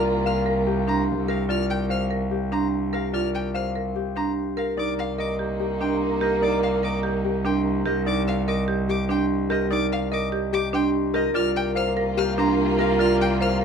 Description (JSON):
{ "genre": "classical, minimalist pattern music", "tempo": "146 BPM", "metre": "4/4", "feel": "straight", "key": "C minor", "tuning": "A4 = 440 Hz", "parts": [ { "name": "Celtic harp", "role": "melody", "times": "0.0-13.6 s", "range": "G4 to F5", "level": "-28 LUFS", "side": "left 10 dB", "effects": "none" }, { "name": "warm French horn", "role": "second line", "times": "0.0-1.3, 4.8-7.8, 11.4-13.6 s", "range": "Bb4", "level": "-28 LUFS", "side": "right 2 dB", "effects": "none" }, { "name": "rich chamber violin section", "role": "sustained chords", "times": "0.0-1.2, 4.8-7.8, 11.4-13.6 s", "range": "Bb3 to F4", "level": "-32 LUFS", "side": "left 1 dB", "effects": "none" }, { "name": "marimba with medium hard mallets", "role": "arpeggios", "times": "0.0-13.6 s", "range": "D4 to C5", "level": "-26 LUFS", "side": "right 5 dB", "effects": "none" }, { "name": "warm cello", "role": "bass", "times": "0.0-13.6 s", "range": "C2", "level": "-26 LUFS", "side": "right 2 dB", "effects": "none" }, { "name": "rich violin", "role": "arpeggios", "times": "0.3-13.6 s", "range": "Eb5 to F6", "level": "-31 LUFS", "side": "left 2 dB", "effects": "none" } ], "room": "moderate large studio reverb, RT60 0.9 s", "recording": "minimal, uncompressed stereo recording", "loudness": "-21 LUFS", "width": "side -6 dB against mid", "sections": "0.0-13.6 A section", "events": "none", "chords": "0.0 Gm7/C; 4.8 Cm9; 11.4 Gm7/C" }